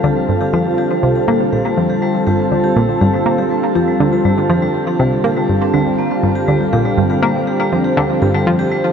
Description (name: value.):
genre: ambient, sequencer-driven space music.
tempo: 121 BPM.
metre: 4/4.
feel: straight.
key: G minor.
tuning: A4 = 440 Hz.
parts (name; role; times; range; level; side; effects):
evolving wavetable pad; sustained chords; 0.0-8.9 s; D3 to A4; -15 LUFS; equal; chorus, built-in reverb, shimmer reverb.
vibraphone with medium hard mallets; arpeggios; 0.0-8.8 s; G3 to G4; -26 LUFS; right 1 dB; auto-pan, tape echo, shimmer reverb.
analog pluck; riff; 0.0-8.5 s; G2 to Bb3; -17 LUFS; equal; chorus, vintage 12-bit sampler grit, tape echo, shimmer reverb.
room: wet huge ambient reverb, RT60 8.0 s.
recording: none.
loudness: -13 LUFS.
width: side -7 dB against mid.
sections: 0.0-8.9 A section.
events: fade-in on vibraphone 0.0-8.9.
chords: 0.0 Gm7.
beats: | 0.28 0.78 1.28 1.77 | 2.27 2.76 3.26 3.76 | 4.25 4.75 5.24 5.74 | 6.24 6.73 7.23 7.72 | 8.22 8.71.